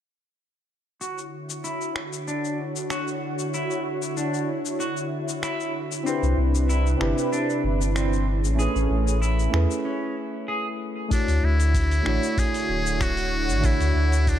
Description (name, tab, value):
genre	sunset chillout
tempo	95 BPM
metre	4/4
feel	straight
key	D lydian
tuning	A4 = 441 Hz
part	lush unison pad	sustained chords	1.0-14.4 s	C3 to C#5	-30 LUFS	equal	chorus
part	clean electric guitar	arpeggios	1.0-10.7 s	C4 to G#4	-31 LUFS	right 1 dB	wide subtle chorus, low-pass filter, tape echo
part	dusty soul sampler-style drum kit	drums	1.0-14.4 s	finger snaps, hi-hat, shaker	-34 LUFS	left 4 dB	none
part	soft electric-piano-like synth keys	accompaniment	6.0-14.4 s	A3 to C#5	-28 LUFS	moving between left 6 dB and right 6 dB	chorus, auto-pan, low-pass filter, tape echo
part	warm sub bass	bass	6.2-14.4 s	D1 to E2	-22 LUFS	equal	none
part	trumpet with metal mute	melody	11.1-14.4 s	D4 to G#4	-27 LUFS	left 1 dB	ping-pong delay
part	electronic kick drum	drums	11.1-14.4 s	none	-25 LUFS	equal	overdrive
room	light reverb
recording	dark, warm production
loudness	-22 LUFS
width	side -10 dB against mid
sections	1.0-11.1 A section; 11.1-14.4 B section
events	filter sweep on clean electric guitar 1.0-11.1; break 9.9-11.1; filter sweep on synth keys 11.1-14.4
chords	1.0 Dmaj9; 6.1 Cmaj9; 8.3 Amaj9; 11.1 Dmaj9